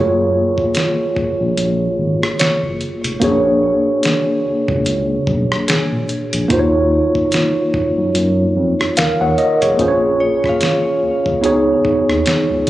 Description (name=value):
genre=contemporary R&B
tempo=73 BPM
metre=4/4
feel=swing 58% on 16ths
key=F# major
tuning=A4 = 440 Hz
part: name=mellow tine electric piano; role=accompaniment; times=0.0-12.7 s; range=A#3 to F#5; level=-15 LUFS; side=equal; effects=medium stereo tremolo
part: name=smooth synth bass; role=bass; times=0.0-12.7 s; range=E#1 to F#2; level=-21 LUFS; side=equal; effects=none
part: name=dusty soul sampler-style drum kit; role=drums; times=0.6-12.7 s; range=hi-hat, kick drum, rim click, snare drum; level=-20 LUFS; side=equal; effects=none
part: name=glassy synth bell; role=texture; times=2.4-12.1 s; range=G#4 to E#5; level=-25 LUFS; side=left 1 dB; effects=chorus, tremolo, digital delay
room=light reverb, digital ambience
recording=recorded on a phone in the room, club reverb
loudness=-14 LUFS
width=side -15 dB against mid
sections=0.0-12.7 A section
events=none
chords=0.0 F#maj9; 3.2 A#7alt; 6.5 D#m9; 9.8 A#m7; 11.4 C#9sus4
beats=0.75 1.57 2.39 | 3.22 4.04 4.86 5.68 | 6.50 7.33 8.15 8.97 | 9.79 10.61 11.44 12.26